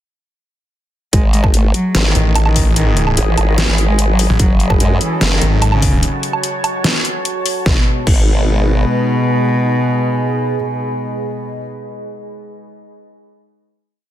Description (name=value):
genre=heavy wobble dubstep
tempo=147 BPM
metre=4/4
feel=half-time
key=G# phrygian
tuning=A4 = 442 Hz
part: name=dark cello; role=melody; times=1.1-11.7 s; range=B2 to A3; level=-19 LUFS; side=equal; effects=dub echo
part: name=formant-sweep wobble bass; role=bass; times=1.1-8.8 s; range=F#1 to F#2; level=-15 LUFS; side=equal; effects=chorus, overdrive
part: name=dubstep drum kit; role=drums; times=1.1-8.2 s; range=crash cymbal, hi-hat, snare drum, woodblock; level=-18 LUFS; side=equal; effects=none
part: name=electronic kick drum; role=drums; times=1.1-8.2 s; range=none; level=-14 LUFS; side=equal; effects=none
part: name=deep dark ambient pad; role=texture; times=1.9-11.7 s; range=F#4 to B5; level=-24 LUFS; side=right 1 dB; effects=chorus, built-in reverb, sidechain pumping
part: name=snarling distorted saw bass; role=bass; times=2.2-6.0 s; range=G#1 to A1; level=-14 LUFS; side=equal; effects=distortion, overdrive
part: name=lush unison pad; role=sustained chords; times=4.6-11.7 s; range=F#3 to B4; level=-25 LUFS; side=left 2 dB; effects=chorus, sidechain pumping
room=digital ambience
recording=dense, heavily limited modern master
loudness=-12 LUFS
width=side -12 dB against mid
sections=1.1-7.7 drop; 7.7-10.9 final chord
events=drop 1.1-7.7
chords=1.1 G#m; 4.4 F#m; 7.7 G#m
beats=| 1.13 1.54 1.95 2.35 | 2.76 3.17 3.58 3.99 | 4.40 4.80 5.21 5.62 | 6.03 6.44 6.84 7.25 | 7.66 8.07 8.48 8.88 | 9.29 9.70 10.11 10.52